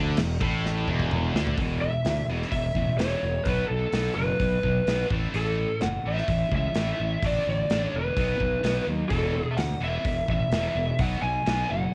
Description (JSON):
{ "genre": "hard rock", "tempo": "127 BPM", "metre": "4/4", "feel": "straight", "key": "unclear", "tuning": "A4 = 440 Hz", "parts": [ { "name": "high-gain distorted guitar", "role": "riff", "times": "0.0-11.9 s", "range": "E2 to D4", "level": "-34 LUFS", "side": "equal", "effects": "distortion, cassette tape" }, { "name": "tight distorted guitar", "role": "riff", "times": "0.0-1.6 s", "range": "E2 to D3", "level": "-33 LUFS", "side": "equal", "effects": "distortion, cassette tape" }, { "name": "fuzz fingered electric bass", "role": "bass", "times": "0.0-11.9 s", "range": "E1 to D#2", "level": "-31 LUFS", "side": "equal", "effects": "overdrive" }, { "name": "big rock drum kit", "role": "drums", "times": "0.2-11.6 s", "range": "crash cymbal, hi-hat, kick drum, snare drum, toms", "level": "-33 LUFS", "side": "equal", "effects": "cassette tape" }, { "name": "lead guitar through a small cranked amp", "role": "melody", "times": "1.8-11.9 s", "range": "A4 to G#5", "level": "-31 LUFS", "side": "equal", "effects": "overdrive" } ], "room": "light reverb", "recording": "home recording on cassette", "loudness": "-26 LUFS", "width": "mono", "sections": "0.0-1.6 A section; 1.6-11.9 B section", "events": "drum fill 0.6-1.6", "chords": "0.0 Esus4; 1.6 E5; 3.5 B5; 5.1 A5; 7.2 D5/A; 8.2 B; 9.1 Esus4; 11.0 B5" }